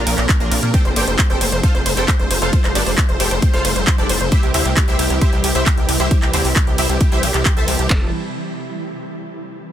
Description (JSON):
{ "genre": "uplifting trance", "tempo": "134 BPM", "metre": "4/4", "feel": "straight", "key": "F major", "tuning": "A4 = 439 Hz", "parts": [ { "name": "supersaw stab", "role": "melody", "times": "0.0-8.1 s", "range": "Bb3 to A5", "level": "-22 LUFS", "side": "equal", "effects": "ensemble chorus, sidechain pumping, tape echo" }, { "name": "shimmering ambient pad", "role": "sustained chords", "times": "0.0-8.1 s", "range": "C3 to F4", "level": "-25 LUFS", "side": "equal", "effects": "chorus, built-in reverb, sidechain pumping" }, { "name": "gritty driven synth bass", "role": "bass", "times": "0.0-8.1 s", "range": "F1 to Bb2", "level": "-20 LUFS", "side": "equal", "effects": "sidechain pumping" }, { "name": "big-room dance drum kit", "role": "drums", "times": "0.1-7.9 s", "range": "handclaps, hi-hat, ride cymbal", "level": "-22 LUFS", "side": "equal", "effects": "none" }, { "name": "house drum kit", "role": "drums", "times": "0.3-8.0 s", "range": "handclaps, kick drum", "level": "-16 LUFS", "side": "equal", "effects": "none" } ], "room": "little or no reverb", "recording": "dense, heavily limited modern master", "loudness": "-14 LUFS", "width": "side -11 dB against mid", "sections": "0.0-7.9 A section; 7.9-9.7 B section", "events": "drop 0.0-7.9", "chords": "0.0 Bbadd9; 0.7 Fadd9; 4.3 C; 7.9 Fadd9" }